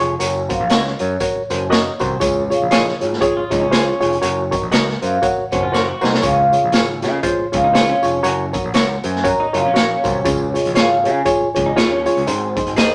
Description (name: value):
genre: uptempo 1960s-style soul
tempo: 119 BPM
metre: 4/4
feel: swing 59% on 8ths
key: Db major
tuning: A4 = 440 Hz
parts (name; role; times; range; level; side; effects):
- bright reed electric piano; accompaniment; 0.0-12.9 s; Ab2 to Eb5; -22 LUFS; equal; phaser
- overdriven picked electric bass; bass; 0.0-12.9 s; F1 to Db3; -27 LUFS; equal; none
- raw garage drum kit; drums; 0.0-12.9 s; hi-hat, kick drum, snare drum; -23 LUFS; equal; none
- vibraphone with soft mallets; melody; 0.2-12.9 s; C5 to Bb5; -23 LUFS; equal; none
- tambourine; percussion; 0.2-12.9 s; none; -39 LUFS; equal; none
- semi-hollow electric guitar; stabs; 0.7-12.9 s; F4 to Eb5; -25 LUFS; equal; none
- electric guitar through a small old amp; riff; 3.2-12.3 s; Db4 to Ab4; -26 LUFS; equal; none
room: moderate studio reverb, RT60 0.8 s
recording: none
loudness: -17 LUFS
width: mono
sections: 0.0-12.9 A section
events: drum fill 5.7-6.2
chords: 0.2 Gb; 2.2 Db; 4.2 Gb; 6.2 Db; 8.2 Gb; 10.3 Db; 12.3 Ab